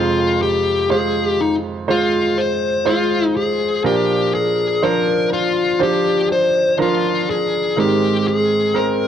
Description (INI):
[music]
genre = pop ballad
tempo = 61 BPM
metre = 4/4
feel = straight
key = unclear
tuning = A4 = 444 Hz
[part]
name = dark smooth lead guitar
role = melody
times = 0.0-9.1 s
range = Eb4 to C5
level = -17 LUFS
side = left 5 dB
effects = overdrive, cassette tape, plate reverb
[part]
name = clear concert grand piano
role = accompaniment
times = 0.0-9.1 s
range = F2 to C5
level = -19 LUFS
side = right 6 dB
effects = cassette tape, plate reverb
[sound]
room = wet studio ambience, RT60 0.5 s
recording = home recording on cassette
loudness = -15 LUFS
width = side -9 dB against mid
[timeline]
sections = 0.0-9.1 A section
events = none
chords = 0.0 Fm; 3.8 Bb; 7.8 Abadd9